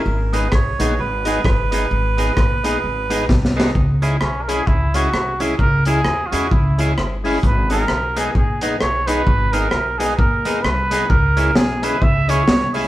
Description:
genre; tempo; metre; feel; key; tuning
ska; 131 BPM; 4/4; swing 59% on 8ths; C# dorian; A4 = 441 Hz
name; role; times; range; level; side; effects
melodica; melody; 0.0-3.3 s; A#4 to C#5; -23 LUFS; right 4 dB; none
upright bass; bass; 0.1-12.9 s; G1 to E2; -21 LUFS; equal; none
clean electric guitar; accompaniment; 0.3-12.9 s; B3 to G#4; -26 LUFS; right 1 dB; analog delay
percussive tonewheel organ; stabs; 0.3-12.9 s; G#3 to G#4; -26 LUFS; left 2 dB; overdrive, slow rotary speaker
crunchy breakbeat drum kit; drums; 0.3-12.8 s; hi-hat, kick drum, rim click, snare drum; -19 LUFS; equal; none
breathy trumpet; melody; 4.2-12.7 s; C#4 to E5; -21 LUFS; right 2 dB; none
room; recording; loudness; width
moderate stone room reverb, RT60 1.2 s; band playing live in one room; -15 LUFS; side -15 dB against mid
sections
0.0-3.8 A section; 3.8-12.9 B section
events
drum fill 3.3-3.8; trumpet solo 3.8-12.9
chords
0.1 G#m; 3.8 C#m; 7.4 G#m; 11.1 C#m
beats
| 0.07 0.53 0.99 1.45 | 1.91 2.37 2.83 3.30 | 3.76 4.22 4.68 5.14 | 5.60 6.06 6.52 6.98 | 7.44 7.89 8.35 8.81 | 9.27 9.73 10.19 10.64 | 11.10 11.56 12.02 12.47

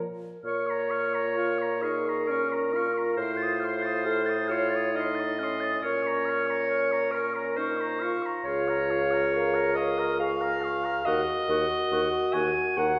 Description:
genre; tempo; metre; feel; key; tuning
classical, slow romantic movement for wind quintet; 68 BPM; 3/4; rubato; Bb minor; A4 = 440 Hz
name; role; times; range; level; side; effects
clear French horn; accompaniment; 0.0-13.0 s; Db4 to Bb4; -35 LUFS; equal; none
dark bassoon; bass; 0.0-12.9 s; Db2 to Bb2; -32 LUFS; equal; none
mellow hollow silver concert flute; melody; 0.4-12.9 s; Db6 to A6; -36 LUFS; equal; none
clear clarinet; accompaniment; 0.4-13.0 s; Ab4 to Ab5; -32 LUFS; equal; none
warm oboe; second line; 0.5-12.9 s; F5 to Eb6; -38 LUFS; equal; none
room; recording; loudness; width
wet recital hall reverb, RT60 1.5 s; heard from further back in the room; -27 LUFS; mono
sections
0.4-13.0 A section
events
none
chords
0.4 Bbm; 3.2 F7/A; 5.8 Bbm; 8.4 Bbm/Db; 11.0 Ebm7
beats
| 0.43 1.35 2.27 | 3.16 4.04 4.95 | 5.82 6.68 7.55 | 8.45 9.32 10.19 | 11.05 11.90 12.77

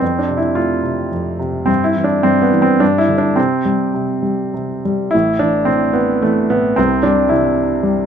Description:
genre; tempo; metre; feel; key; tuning
classical, lyrical solo piano; 95-115 BPM; 3/4; rubato; C major; A4 = 438 Hz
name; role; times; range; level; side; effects
warm grand piano; solo; 0.0-8.1 s; A1 to F4; -13 LUFS; right 1 dB; none
room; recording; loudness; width
light reverb; close, detailed microphones; -13 LUFS; side -8 dB against mid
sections
0.0-5.1 A section; 5.1-8.1 B section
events
none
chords
0.0 F; 1.7 G6; 2.8 G5; 3.4 C5; 5.1 A5; 6.8 C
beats
| 0.01 0.57 1.13 | 1.69 2.25 2.81 | 3.38 3.94 4.55 | 5.14 5.69 6.24 | 6.78 7.30 7.84

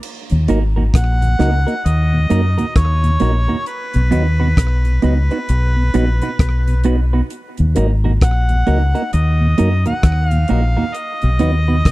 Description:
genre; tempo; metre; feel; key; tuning
roots reggae; 66 BPM; 4/4; swing 62% on 16ths; Eb minor; A4 = 441 Hz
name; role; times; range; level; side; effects
damped 70s drum kit; drums; 0.0-11.9 s; crash cymbal, hi-hat, kick drum, rim click; -16 LUFS; equal; none
mellow tonewheel organ; accompaniment; 0.3-11.8 s; Eb2 to Eb4; -23 LUFS; left 1 dB; overdrive, chorus vibrato, slow rotary speaker, slapback echo
deep dub fingered electric bass; bass; 0.3-11.9 s; Ab1 to Gb2; -14 LUFS; equal; none
clean electric guitar; accompaniment; 0.5-11.8 s; Bb3 to B4; -22 LUFS; right 6 dB; spring reverb, dub echo
breathy harmonica; melody; 0.9-11.9 s; B4 to Gb5; -23 LUFS; equal; dub echo
room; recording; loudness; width
small room ambience; dry, close 1970s-style studio recording; -13 LUFS; side -18 dB against mid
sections
0.0-11.9 A section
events
none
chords
0.0 Ebm; 3.7 B; 7.3 Ebm; 10.9 B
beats
| 0.03 0.94 1.85 2.76 | 3.67 4.58 5.49 6.40 | 7.31 8.22 9.13 10.04 | 10.95 11.86

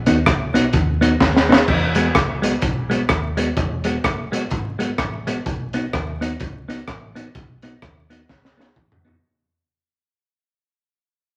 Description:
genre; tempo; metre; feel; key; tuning
ska; 127 BPM; 4/4; swing 60% on 8ths; E major; A4 = 440 Hz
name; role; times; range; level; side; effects
hollow-body short-scale fingered electric bass; bass; 0.0-9.2 s; E1 to E2; -28 LUFS; equal; none
clean electric guitar; accompaniment; 0.1-9.2 s; G#3 to F#4; -23 LUFS; equal; none
crunchy breakbeat drum kit; drums; 0.1-9.2 s; crash cymbal, hi-hat, kick drum, rim click, snare drum, toms; -22 LUFS; equal; none
room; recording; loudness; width
wet large studio reverb, RT60 0.9 s; vinyl crackle; -20 LUFS; mono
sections
0.0-1.7 A section; 1.7-9.2 B section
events
drum fill 1.2-1.7, 8.3-9.2; fade-out 1.7-9.2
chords
0.0 B; 1.7 Eadd9; 5.5 B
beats
0.26 0.73 1.21 | 1.68 2.15 2.62 3.10 | 3.57 4.04 4.51 4.99 | 5.46 5.93 6.40 6.88 | 7.35 7.82 8.29 8.76

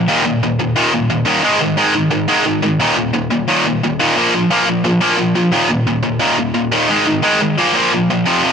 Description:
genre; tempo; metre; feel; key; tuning
punk; 176 BPM; 4/4; straight; unclear; A4 = 440 Hz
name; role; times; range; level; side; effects
tight distorted guitar; solo; 0.0-8.5 s; Eb2 to Bb3; -12 LUFS; equal; distortion, tape echo
room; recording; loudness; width
moderate studio reverb, RT60 0.6 s; none; -12 LUFS; side -6 dB against mid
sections
0.0-8.3 A section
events
none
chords
0.1 Eb5; 1.4 Ab5; 2.8 Eb5; 4.2 Bb5; 5.5 Eb5; 6.9 Ab5; 7.6 Bb5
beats
| 0.07 0.41 0.75 1.09 | 1.43 1.77 2.11 2.45 | 2.79 3.13 3.47 3.81 | 4.15 4.50 4.84 5.18 | 5.52 5.87 6.21 6.55 | 6.89 7.24 7.58 7.92 | 8.26

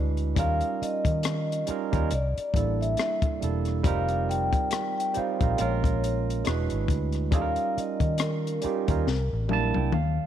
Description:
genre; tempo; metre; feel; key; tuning
R&B, neo-soul; 69 BPM; 4/4; swing 58% on 16ths; unclear; A4 = 437 Hz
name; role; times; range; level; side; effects
barky tine electric piano; accompaniment; 0.0-10.3 s; G3 to A5; -30 LUFS; right 11 dB; overdrive
vintage muted fingered electric bass; bass; 0.0-10.2 s; E1 to Eb3; -28 LUFS; equal; none
compact cocktail drum kit; drums; 0.2-10.2 s; hi-hat, kick drum, rim click, snare drum, toms; -28 LUFS; left 3 dB; none
vibraphone with soft mallets; melody; 0.4-9.9 s; Bb4 to G5; -31 LUFS; left 3 dB; none
room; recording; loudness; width
light reverb, studio ambience; 1960s-style stereo; -24 LUFS; side -10 dB against mid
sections
0.0-10.3 A section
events
drum fill 9.1-10.3; tine electric piano fill 9.1-10.3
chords
0.4 Eb9; 2.1 C13; 3.8 F9sus4; 5.6 Bbm7; 6.4 E9; 7.3 Eb9; 9.1 C13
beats
| 0.36 1.23 2.10 2.97 | 3.84 4.71 5.58 6.45 | 7.32 8.19 9.06 9.93

